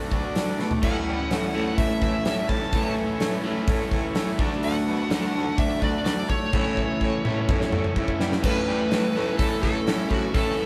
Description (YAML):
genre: classic rock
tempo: 126 BPM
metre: 4/4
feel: straight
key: A major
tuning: A4 = 440 Hz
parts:
  - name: bright tonewheel organ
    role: sustained chords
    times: 0.0-10.7 s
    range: A3 to D5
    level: -39 LUFS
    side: equal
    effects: none
  - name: raw garage guitar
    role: riff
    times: 0.0-10.7 s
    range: A2 to F#4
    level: -31 LUFS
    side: equal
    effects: overdrive
  - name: raspy baritone saxophone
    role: bass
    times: 0.0-10.6 s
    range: D2 to G3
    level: -34 LUFS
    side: equal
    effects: none
  - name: huge arena drum kit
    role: drums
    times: 0.1-10.5 s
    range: crash cymbal, hi-hat, kick drum, snare drum, toms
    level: -28 LUFS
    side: equal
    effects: none
  - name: smooth overdriven lead guitar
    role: melody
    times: 0.8-10.7 s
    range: F#4 to A5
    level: -32 LUFS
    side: equal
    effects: none
  - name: overdriven electric guitar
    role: riff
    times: 0.8-10.7 s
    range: A2 to D4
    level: -33 LUFS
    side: equal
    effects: none
room: moderate stone room reverb, RT60 1.3 s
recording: band playing live in one room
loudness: -24 LUFS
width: mono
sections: 0.0-8.4 A section; 8.4-10.7 A section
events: drum fill 0.6, 6.5-8.4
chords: 0.0 D; 0.8 A; 4.4 D; 6.5 A